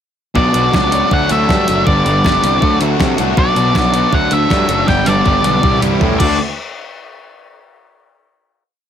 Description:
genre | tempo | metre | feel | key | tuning
indie rock | 159 BPM | 4/4 | straight | D mixolydian | A4 = 440 Hz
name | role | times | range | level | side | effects
fuzz guitar | riff | 0.3-6.4 s | G2 to G4 | -16 LUFS | left 1 dB | distortion
octave-fuzz lead guitar | melody | 0.4-6.4 s | D5 to G5 | -16 LUFS | equal | distortion, slapback echo, plate reverb
fuzz picked electric bass | bass | 0.4-6.4 s | F#1 to C3 | -18 LUFS | equal | overdrive
crisp 8-bit digital drum machine | drums | 0.4-6.3 s | crash cymbal, hi-hat, kick drum, snare drum, toms | -18 LUFS | equal | none
room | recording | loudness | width
light reverb | none | -11 LUFS | side -9 dB against mid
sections
0.3-6.4 pre-chorus; 6.4-7.9 final hit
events
drum fill 4.9-6.4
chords
0.3 Bm; 1.1 Dadd9; 1.9 G; 2.6 D; 3.4 Bm; 4.1 Dadd9; 4.9 G; 5.6 C; 6.2 D; 6.4 N.C.

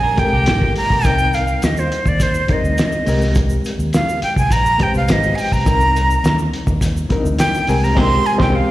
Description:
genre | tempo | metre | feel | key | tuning
lush 1970s-style soul | 104 BPM | 4/4 | straight | C minor | A4 = 440 Hz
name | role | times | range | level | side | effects
breathy bright jazz flute | melody | 0.0-8.7 s | C5 to C6 | -18 LUFS | right 1 dB | slapback echo
bright reed electric piano | accompaniment | 0.0-8.7 s | G3 to C5 | -22 LUFS | left 2 dB | fast tremolo, slapback echo
clean electric guitar | riff | 0.0-1.0, 8.0-8.6 s | Bb3 to C5 | -28 LUFS | right 8 dB | lush chorus, slapback echo
vintage muted fingered electric bass | bass | 0.0-8.6 s | Ab1 to Eb2 | -19 LUFS | equal | none
cloth-damped thuddy drum kit | drums | 0.2-8.6 s | crash cymbal, hi-hat, kick drum, snare drum | -19 LUFS | equal | none
tube shaker | percussion | 1.0-8.0 s | none | -38 LUFS | right 3 dB | none
room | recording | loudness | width
small room reverb | live gig heard through the venue's PA, recital hall reverb | -14 LUFS | side -15 dB against mid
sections
0.0-8.7 A section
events
flute solo 0.0-8.7; band accent 8.0-8.7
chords
0.0 Abmaj9; 1.1 Cm7; 3.1 Abmaj9/C; 5.7 Cm7; 7.7 Abmaj9/C

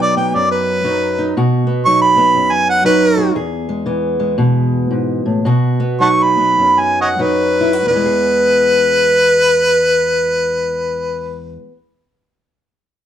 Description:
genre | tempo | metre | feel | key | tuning
acoustic country blues, solo or duo | 90-119 BPM | 4/4 | swing 63% on 8ths | E major | A4 = 440 Hz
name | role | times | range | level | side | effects
warm harmonica | melody | 0.0-11.6 s | B4 to C#6 | -12 LUFS | equal | plate reverb
fingerpicked steel-string acoustic guitar | accompaniment | 0.0-11.8 s | E2 to G#4 | -17 LUFS | equal | none
room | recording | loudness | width
moderate studio reverb, RT60 0.7 s | dark, warm production | -12 LUFS | side -10 dB against mid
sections
0.0-7.9 A section; 7.9-13.1 B section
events
slowing down 3.4-7.9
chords
0.0 B; 3.4 E; 5.5 B; 7.9 E

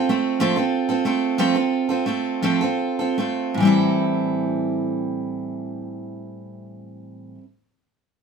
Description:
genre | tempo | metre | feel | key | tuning
folk | 49-64 BPM (dotted quarters) | 6/8 | straight | A minor | A4 = 440 Hz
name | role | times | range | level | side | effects
picked steel-string acoustic guitar | accompaniment | 0.0-7.5 s | A2 to A4 | -20 LUFS | right 2 dB | none
room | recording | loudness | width
moderate studio reverb, RT60 0.7 s | minimal, uncompressed stereo recording | -19 LUFS | side -6 dB against mid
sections
0.0-3.6 A section; 3.6-8.2 B section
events
slowing down 0.0-3.6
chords
0.0 F; 3.6 Am7

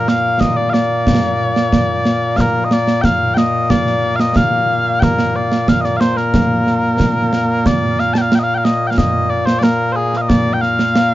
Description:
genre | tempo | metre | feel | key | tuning
scottish traditional, Scottish pipe music | 91 BPM | 2/4 | straight | Bb major | A4 = 440 Hz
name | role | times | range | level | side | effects
mellow small bagpipes | melody | 0.0-11.1 s | Bb2 to A5 | -15 LUFS | left 1 dB | none
concert snare drum and concert bass drum | drums | 0.1-11.1 s | none | -16 LUFS | right 1 dB | none
room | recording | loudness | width
little or no reverb | dark, warm production, nothing above 7.5 kHz | -13 LUFS | side -15 dB against mid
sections
0.0-7.7 A section; 7.7-11.1 B section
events
none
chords
none

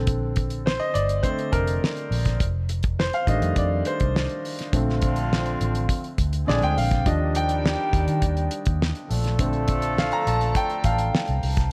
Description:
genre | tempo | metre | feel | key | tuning
lush 1970s-style soul | 103 BPM | 4/4 | straight | Bb major | A4 = 438 Hz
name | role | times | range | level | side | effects
clear concert grand piano | accompaniment | 0.0-11.7 s | D3 to Bb5 | -29 LUFS | equal | none
vintage muted fingered electric bass | bass | 0.0-11.7 s | F1 to Eb3 | -27 LUFS | equal | none
damped 70s drum kit | drums | 0.1-11.7 s | hi-hat, kick drum, snare drum | -28 LUFS | equal | none
mellow horn section | stabs | 4.7-11.4 s | D3 to A4 | -32 LUFS | equal | none
room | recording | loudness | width
light reverb, small room reverb | none | -24 LUFS | mono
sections
0.0-11.7 A section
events
grand piano solo 0.0-11.7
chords
0.0 Bbmaj9; 2.4 F13; 4.7 Bbmaj9; 6.5 Bb7; 7.1 Ebmaj7; 9.1 Bbmaj9

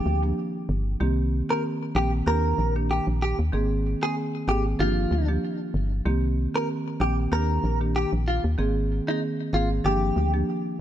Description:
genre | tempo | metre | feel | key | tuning
afrobeats | 95 BPM | 4/4 | swing 55% on 16ths | C minor | A4 = 440 Hz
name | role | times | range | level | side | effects
direct-recorded clean electric guitar | melody | 0.0-10.3 s | Eb4 to Bb4 | -28 LUFS | equal | lush chorus, ping-pong delay
marimba with medium mallets | accompaniment | 0.0-10.5 s | Eb3 to Ab4 | -28 LUFS | right 1 dB | none
organ-like FM bass | bass | 0.1-10.4 s | G1 to Eb2 | -24 LUFS | equal | none
room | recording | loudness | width
small room ambience | none | -22 LUFS | side -11 dB against mid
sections
0.0-10.8 A section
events
none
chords
0.0 Gm7; 1.0 Cm7; 2.3 Ebmaj7; 3.5 Abadd9; 4.8 Gm7; 6.1 Cm7; 7.3 Ebmaj7; 8.6 Abadd9; 9.8 Gm7

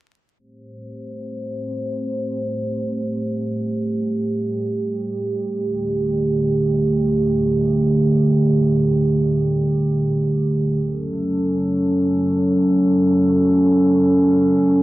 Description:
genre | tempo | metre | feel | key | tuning
trip hop | free time | none | none | unclear | A4 = 443 Hz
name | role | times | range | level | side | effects
dark analog pad | sustained chords | 0.4-14.8 s | D3 to C5 | -17 LUFS | right 1 dB | chorus, vintage 12-bit sampler grit
room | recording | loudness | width
light reverb | vinyl crackle, low-pass filter | -17 LUFS | side -16 dB against mid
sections
0.4-14.8 A section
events
filter sweep 0.4-14.8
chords
0.4 Am7; 5.6 Dsus4; 10.8 F#m

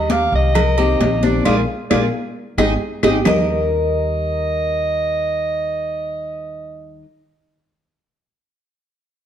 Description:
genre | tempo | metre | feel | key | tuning
latin, Cuban son and guajira | 133 BPM | 4/4 | straight | Eb major | A4 = 440 Hz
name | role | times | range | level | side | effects
warm clarinet | melody | 0.0-7.0 s | D5 to F5 | -22 LUFS | right 1 dB | none
nylon-string guitar | accompaniment | 0.0-7.1 s | Eb3 to G4 | -25 LUFS | left 2 dB | none
upright bass | bass | 0.0-7.0 s | Ab1 to Eb2 | -22 LUFS | equal | none
Cuban tres | arpeggios | 0.1-7.0 s | D4 to Eb5 | -21 LUFS | equal | none
congas | percussion | 0.1-3.4 s | none | -24 LUFS | left 2 dB | none
cowbell and bongos | percussion | 0.1-3.4 s | none | -26 LUFS | left 4 dB | none
timbales and agogo bells | percussion | 0.1-3.4 s | none | -26 LUFS | right 8 dB | none
claves | percussion | 0.5-3.4 s | none | -30 LUFS | left 7 dB | none
room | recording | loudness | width
wet large studio reverb, RT60 1.2 s | dark, warm production | -16 LUFS | side -9 dB against mid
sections
0.0-3.3 A section; 3.3-6.9 B section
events
band accent 1.5-3.3; drum fill 2.8-3.3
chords
0.0 Ebmaj7; 0.6 Cm7; 1.5 Bb7; 2.4 Abmaj7; 3.3 Eb

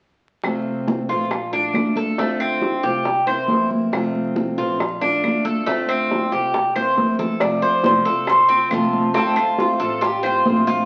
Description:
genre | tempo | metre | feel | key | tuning
latin, Cuban son and guajira | 138 BPM | 4/4 | straight | F major | A4 = 440 Hz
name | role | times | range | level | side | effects
fingerpicked steel-string acoustic guitar | accompaniment | 0.4-10.9 s | C3 to F4 | -27 LUFS | equal | none
upright bass | bass | 0.4-10.9 s | F1 to F2 | -40 LUFS | equal | none
bongos | percussion | 0.4-10.7 s | none | -30 LUFS | equal | none
claves | percussion | 0.4-10.5 s | none | -36 LUFS | equal | none
congas | percussion | 0.4-10.9 s | none | -28 LUFS | equal | none
Cuban tres | arpeggios | 1.1-10.9 s | A3 to C5 | -23 LUFS | equal | none
Cuban tres | melody | 7.4-10.7 s | F4 to D5 | -21 LUFS | equal | none
room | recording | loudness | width
wet large studio reverb, RT60 0.9 s | very old 78 rpm record, vinyl crackle | -20 LUFS | mono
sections
0.4-7.4 A section; 7.4-10.9 B section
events
drum fill 6.8-7.4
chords
0.4 Fmaj7; 1.3 Bbmaj7; 2.2 Dm7; 3.1 C7; 3.9 Fmaj7; 4.8 Bbmaj7; 5.7 Dm7; 6.5 C7; 7.4 F; 9.1 Dm7

